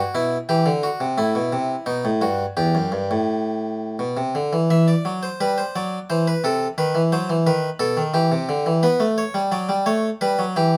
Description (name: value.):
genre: classical, baroque-style two-part invention for harpsichord.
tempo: 87 BPM.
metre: 3/4.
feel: straight.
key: E minor.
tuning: A4 = 440 Hz.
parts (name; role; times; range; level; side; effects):
harpsichord; solo; 0.0-10.8 s; E2 to E5; -21 LUFS; equal; none.
room: light reverb.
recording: none.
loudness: -21 LUFS.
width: mono.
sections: 0.0-4.7 A section; 4.7-10.8 B section.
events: none.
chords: 0.5 C; 1.2 Am; 1.9 B7; 2.6 Em; 6.1 Am/E; 6.8 B7/D#; 8.2 Em; 8.8 Bm; 10.2 Em.